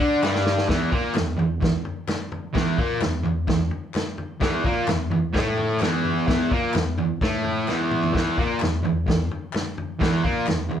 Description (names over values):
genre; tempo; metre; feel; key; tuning
garage rock duo or trio; 129 BPM; 4/4; straight; unclear; A4 = 440 Hz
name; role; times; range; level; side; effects
fuzz guitar; riff; 0.0-10.8 s; E2 to D4; -22 LUFS; right 1 dB; distortion
vintage drum kit; drums; 0.0-10.8 s; kick drum, snare drum, toms; -26 LUFS; left 1 dB; none
group handclap; percussion; 0.2-10.6 s; none; -35 LUFS; left 6 dB; none
room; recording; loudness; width
wet studio ambience, RT60 0.5 s; band playing live in one room, cassette tape; -21 LUFS; side -9 dB against mid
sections
0.7-10.8 A section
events
drum fill 0.2-0.7, 7.7-8.1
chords
0.0 Em7 (rootless); 0.7 Esus4